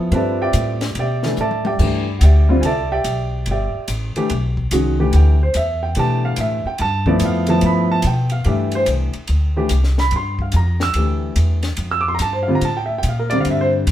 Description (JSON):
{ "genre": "modal jazz", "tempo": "144 BPM", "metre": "4/4", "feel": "swing 66% on 8ths", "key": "D dorian", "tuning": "A4 = 441 Hz", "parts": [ { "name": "warm baby grand piano", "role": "accompaniment", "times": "0.0-13.9 s", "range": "D3 to E6", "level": "-19 LUFS", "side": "equal", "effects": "none" }, { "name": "upright bass", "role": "bass", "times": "0.1-13.9 s", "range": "G1 to B2", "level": "-18 LUFS", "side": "equal", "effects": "none" }, { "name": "compact cocktail drum kit", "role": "drums", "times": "0.1-13.9 s", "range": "crash cymbal, hi-hat, kick drum, ride cymbal, snare drum, toms", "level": "-29 LUFS", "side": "left 1 dB", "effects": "none" } ], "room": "moderate studio reverb, RT60 0.7 s", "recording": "band playing live in one room", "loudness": "-16 LUFS", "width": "side -12 dB against mid", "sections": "0.0-8.5 A section; 8.5-13.9 A section", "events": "drum fill 1.4-1.8", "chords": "0.0 D13sus4; 6.8 G13; 8.5 C13sus4" }